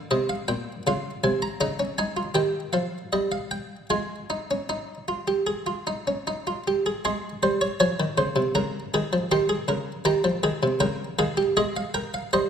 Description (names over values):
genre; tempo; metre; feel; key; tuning
classical, baroque-style 3-part fugue for harpsichord; 79 BPM; 4/4; straight; Ab major; A4 = 442 Hz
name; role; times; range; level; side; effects
buff-stop harpsichord; solo; 0.0-12.5 s; Bb2 to C6; -23 LUFS; equal; none
room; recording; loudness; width
wet recital hall reverb, RT60 1.6 s; none; -23 LUFS; side -8 dB against mid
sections
0.0-7.1 A section; 7.1-12.5 B section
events
none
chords
0.0 Eb; 0.9 Bbm7; 2.4 Eb; 3.9 Ab5; 7.1 Ab; 8.6 Bbm7/Db; 10.1 Eb7; 11.6 Ab